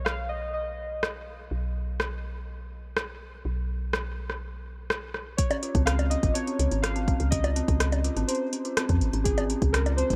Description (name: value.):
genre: IDM.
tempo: 124 BPM.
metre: 4/4.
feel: straight.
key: unclear.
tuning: A4 = 437 Hz.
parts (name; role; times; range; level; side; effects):
warbly lo-fi synth keys; melody; 0.0-1.2, 5.4-10.2 s; Ab4 to F5; -35 LUFS; equal; chorus, digital delay.
woody FM bass; bass; 0.0-10.2 s; Ab1 to F2; -31 LUFS; equal; none.
electro analog drum machine; drums; 0.1-10.2 s; bongos, hi-hat, rim click; -33 LUFS; equal; none.
electronic kick drum; drums; 5.4-10.2 s; none; -29 LUFS; equal; none.
dark detuned synth bell; arpeggios; 5.5-10.2 s; C4 to F4; -34 LUFS; equal; chorus, tape echo.
room: little or no reverb.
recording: none.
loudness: -28 LUFS.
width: mono.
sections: 0.0-5.4 A section; 5.4-10.2 B section.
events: none.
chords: 0.0 N.C.; 5.4 Dbmaj9.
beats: 0.06 0.55 1.03 | 1.51 2.00 2.48 2.97 | 3.45 3.93 4.42 4.90 | 5.38 5.87 6.35 6.84 | 7.32 7.80 8.29 8.77 | 9.26 9.74.